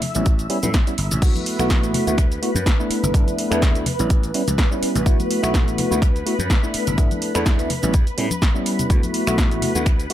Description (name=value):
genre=filtered disco house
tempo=125 BPM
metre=4/4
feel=swing 55% on 16ths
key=D major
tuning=A4 = 437 Hz
part: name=string machine, full ensemble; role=sustained chords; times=0.0-10.1 s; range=B4 to E6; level=-28 LUFS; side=left 1 dB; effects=phaser, ensemble chorus, vintage 12-bit sampler grit, sidechain pumping, low-pass filter
part: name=glassy slap bass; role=bass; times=0.0-10.1 s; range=G1 to A2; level=-25 LUFS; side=equal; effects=sidechain pumping, low-pass filter
part: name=punchy analog drum machine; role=drums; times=0.0-10.1 s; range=crash cymbal, finger snaps, hi-hat, shaker, snare drum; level=-26 LUFS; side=equal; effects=none
part: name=congas and tambourine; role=percussion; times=0.0-10.1 s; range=none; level=-29 LUFS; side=left 2 dB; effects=sidechain pumping on perc, low-pass filter on perc
part: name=tine electric piano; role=accompaniment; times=0.1-10.1 s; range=G3 to F#4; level=-23 LUFS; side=equal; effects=phaser, sidechain pumping, low-pass filter
part: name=electronic kick drum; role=drums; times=0.3-10.0 s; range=none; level=-18 LUFS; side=equal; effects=none
room=little or no reverb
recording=faint mains hum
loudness=-17 LUFS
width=side -12 dB against mid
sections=0.0-10.1 A section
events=filter sweep 0.0-10.1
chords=0.0 A9; 1.2 D69; 2.9 G6; 3.9 A9; 5.1 D69; 6.7 G6; 7.7 A9; 8.9 D69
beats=0.26 0.74 | 1.22 1.70 2.18 2.66 | 3.14 3.62 4.10 4.58 | 5.06 5.54 6.02 6.50 | 6.98 7.46 7.94 8.42 | 8.90 9.38 9.86